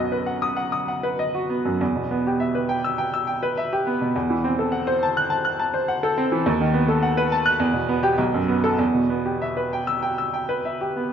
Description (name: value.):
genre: classical, virtuoso piano study.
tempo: 103 BPM.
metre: 4/4.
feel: uneven beats, rubato.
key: E minor.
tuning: A4 = 439 Hz.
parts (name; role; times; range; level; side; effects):
bright baby grand piano; solo; 0.0-11.1 s; B1 to F#6; -20 LUFS; equal; none.
room: wet recital hall reverb, RT60 1.5 s.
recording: nothing above 7.4 kHz.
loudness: -20 LUFS.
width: side -8 dB against mid.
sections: 0.0-11.1 A section.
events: none.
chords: 0.0 B; 1.8 Em; 4.1 F#m7b5/E; 6.5 B7/D#; 7.6 Em; 8.2 B5; 8.8 Em.